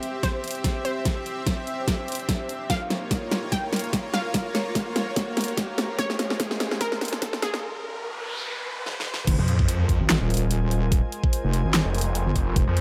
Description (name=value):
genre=heavy wobble dubstep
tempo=146 BPM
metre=4/4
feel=swing 55% on 16ths, half-time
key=F minor from 9.3 s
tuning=A4 = 440 Hz
part: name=unison pluck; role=melody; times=0.0-9.2 s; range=Ab4 to G5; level=-35 LUFS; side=equal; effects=dub echo
part: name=supersaw pad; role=sustained chords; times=0.0-12.8 s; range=Ab3 to E5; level=-36 LUFS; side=equal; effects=sidechain pumping, low-pass filter
part: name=dubstep drum kit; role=drums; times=0.0-12.8 s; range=crash cymbal, handclaps, hi-hat, snare drum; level=-29 LUFS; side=equal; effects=overdrive
part: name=riser, noise sweep and sub drop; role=sound effects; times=0.4-10.9 s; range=none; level=-36 LUFS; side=equal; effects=none
part: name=airy breathy pad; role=texture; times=0.0-12.8 s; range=Db4 to C6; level=-38 LUFS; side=equal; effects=chorus, sidechain pumping
part: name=electronic kick drum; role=drums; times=0.2-12.7 s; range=none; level=-28 LUFS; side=equal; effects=overdrive
part: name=wobble bass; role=bass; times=9.3-12.7 s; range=Eb1 to Ab1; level=-26 LUFS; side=equal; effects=chorus, overdrive
part: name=snarling distorted saw bass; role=bass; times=9.4-12.8 s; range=F1 to F2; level=-26 LUFS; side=equal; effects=distortion, overdrive
room=light reverb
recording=high-pass filter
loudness=-26 LUFS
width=mono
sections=0.0-9.3 A section; 9.3-12.8 B section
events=build-up 0.0-9.3; drum fill 0.0-7.6, 8.9-9.3; riser 0.4-9.3; filter sweep 0.0-9.3; break 7.6-9.3; noise sweep 7.6-9.3; drop 9.3-12.8; impact 9.3-10.9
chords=0.0 C; 2.7 Bbm; 6.0 Db; 9.3 Fm